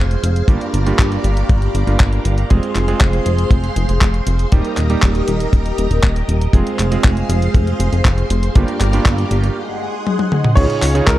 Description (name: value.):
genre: italo disco.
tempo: 119 BPM.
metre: 4/4.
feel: straight.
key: F dorian.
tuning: A4 = 440 Hz.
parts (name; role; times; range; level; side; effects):
string machine, full ensemble; sustained chords; 0.0-11.2 s; G4 to Db6; -23 LUFS; left 1 dB; phaser, ensemble chorus.
clear electric grand piano; stabs; 0.0-11.2 s; G2 to Bb4; -23 LUFS; right 4 dB; tape echo.
chorused synth bass; bass; 0.0-11.2 s; Eb1 to Db2; -17 LUFS; equal; tube saturation.
clean 12-bit digital drum machine; drums; 0.1-11.2 s; crash cymbal, handclaps, hi-hat, toms; -21 LUFS; left 1 dB; overdrive.
kick drum; drums; 0.5-11.2 s; none; -12 LUFS; equal; none.
clear baby grand piano; melody; 10.6-11.2 s; Bb4 to Db5; -19 LUFS; right 2 dB; tape echo.
room: light reverb, small room ambience.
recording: dark, warm production.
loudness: -13 LUFS.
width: side -15 dB against mid.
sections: 0.0-10.6 A section.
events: break 9.6-10.6; drum fill 10.1-10.6.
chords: 0.5 Gm7; 2.5 Fm; 4.5 Eb; 6.5 Fm; 8.6 Gm7; 9.6 Ab7; 10.6 Dbadd9.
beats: | 0.49 0.99 1.49 2.00 | 2.50 3.01 3.51 4.01 | 4.52 5.02 5.53 6.03 | 6.54 7.04 7.54 8.05 | 8.55 9.06 9.56 10.07 | 10.57 11.07.